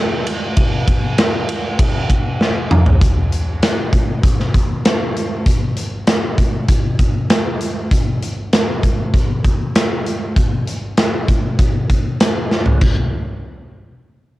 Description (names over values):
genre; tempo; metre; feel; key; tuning
rock; 98 BPM; 4/4; straight; none; none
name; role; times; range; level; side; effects
big rock drum kit; drums; 0.3-13.0 s; crash cymbal, hi-hat, kick drum, ride cymbal, snare drum, toms; -14 LUFS; equal; cassette tape
room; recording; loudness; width
light reverb; home recording on cassette; -14 LUFS; side -17 dB against mid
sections
0.0-3.0 A section; 3.0-12.8 B section; 12.8-14.4 C section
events
drum fill 2.4-3.0, 12.5-12.8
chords
none